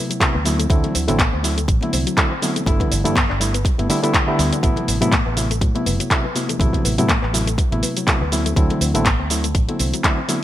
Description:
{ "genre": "nu-disco, nu disco", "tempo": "122 BPM", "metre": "4/4", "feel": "swing 56% on 16ths", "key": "A dorian", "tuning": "A4 = 440 Hz", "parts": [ { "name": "barky reed electric piano", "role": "accompaniment", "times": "0.0-10.4 s", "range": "C3 to E4", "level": "-22 LUFS", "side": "equal", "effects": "overdrive, vintage 12-bit sampler grit, sidechain pumping, digital delay" }, { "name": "soft round pluck", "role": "arpeggios", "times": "0.0-10.4 s", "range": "F#3 to E4", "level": "-29 LUFS", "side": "left 4 dB", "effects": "chorus, sidechain pumping, ping-pong delay" }, { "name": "house drum kit", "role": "drums", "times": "0.1-10.4 s", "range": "handclaps, hi-hat, shaker", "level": "-22 LUFS", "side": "equal", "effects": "gated reverb" }, { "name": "electronic kick drum", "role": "drums", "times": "0.2-10.2 s", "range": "none", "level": "-19 LUFS", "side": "equal", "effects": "none" }, { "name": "fingered electric bass with an envelope filter", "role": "bass", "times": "0.3-9.9 s", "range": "F#1 to A2", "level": "-22 LUFS", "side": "equal", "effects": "none" }, { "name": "congas", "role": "percussion", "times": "0.4-10.4 s", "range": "none", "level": "-29 LUFS", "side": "left 4 dB", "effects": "none" } ], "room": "light reverb, digital ambience", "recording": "bright 1980s-style digital production", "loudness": "-16 LUFS", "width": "side -13 dB against mid", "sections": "0.0-10.4 A section", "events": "none", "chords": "0.5 D9; 2.7 G6; 4.6 Am69; 8.3 D9" }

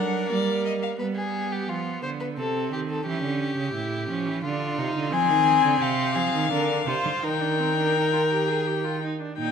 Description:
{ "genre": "classical, baroque-style fugue for string quartet", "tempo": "86 BPM", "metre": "3/4", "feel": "straight", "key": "Eb major from 5.1 s", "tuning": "A4 = 440 Hz", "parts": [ { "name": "rich violin", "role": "melody", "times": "0.0-0.9, 5.1-9.5 s", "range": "D5 to Ab5", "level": "-25 LUFS", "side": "left 12 dB", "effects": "none" }, { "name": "warm violin", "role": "second line", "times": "0.0-9.0 s", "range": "F4 to C5", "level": "-28 LUFS", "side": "left 2 dB", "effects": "none" }, { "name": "rich viola", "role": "accompaniment", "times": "0.0-9.5 s", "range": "Bb3 to Ab4", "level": "-30 LUFS", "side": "right 4 dB", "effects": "none" }, { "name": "rich cello", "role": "bass", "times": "0.0-9.5 s", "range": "A2 to G3", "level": "-28 LUFS", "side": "right 6 dB", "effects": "none" } ], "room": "wet recital hall reverb, RT60 1.6 s", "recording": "none", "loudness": "-22 LUFS", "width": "side -7 dB against mid", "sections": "0.0-1.0 A section; 1.0-9.4 B section", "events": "none", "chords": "0.3 Gm; 1.0 G7; 2.4 Cm; 3.1 A7; 4.4 Dm; 5.1 Fm; 6.5 Bb/D; 7.2 Eb" }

